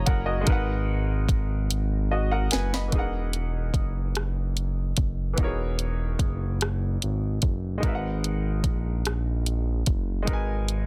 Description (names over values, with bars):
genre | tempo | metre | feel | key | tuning
slow six-eight R&B | 49 BPM (dotted quarters) | 6/8 | straight | unclear | A4 = 437 Hz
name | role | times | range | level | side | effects
clear baby grand piano | accompaniment | 0.0-10.9 s | E3 to B5 | -35 LUFS | equal | plate reverb
smooth synth bass | bass | 0.0-10.9 s | E1 to A#1 | -29 LUFS | equal | none
smooth R&B drum kit | drums | 0.1-10.9 s | hi-hat, kick drum, rim click, snare drum | -28 LUFS | equal | soft clipping on snare
room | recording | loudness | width
little or no reverb | dense, heavily limited modern master | -26 LUFS | mono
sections
0.0-2.9 A section; 2.9-10.9 B section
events
drum fill 1.7-2.9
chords
0.0 G#m9; 2.9 Emaj9#11; 7.8 G#m9